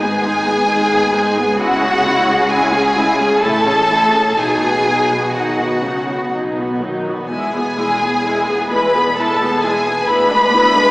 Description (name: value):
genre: classical, slow romantic movement for string orchestra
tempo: 64 BPM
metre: 3/4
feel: uneven beats, rubato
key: E major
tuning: A4 = 441 Hz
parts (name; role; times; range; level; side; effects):
- rich symphonic violin section; melody; 0.0-10.9 s; F#5 to B5; -18 LUFS; left 1 dB; none
- warm symphonic violin section; second line; 0.0-10.9 s; F#4 to B4; -17 LUFS; equal; none
- rich symphonic viola section; accompaniment; 0.0-10.9 s; F#3 to G#4; -19 LUFS; equal; none
- clear symphonic double bass section; bass; 0.0-10.9 s; E1 to D2; -28 LUFS; equal; none
- warm symphonic cello section; bass; 0.0-10.9 s; D2 to D#3; -25 LUFS; equal; none
room: wet church reverb, RT60 3.0 s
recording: recorded in a church or concert hall, small speaker sound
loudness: -13 LUFS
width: side -21 dB against mid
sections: 0.0-10.9 A section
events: none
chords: 0.0 G#m; 1.6 C#m; 3.4 Amaj7; 4.4 B; 7.3 E; 10.1 E7/D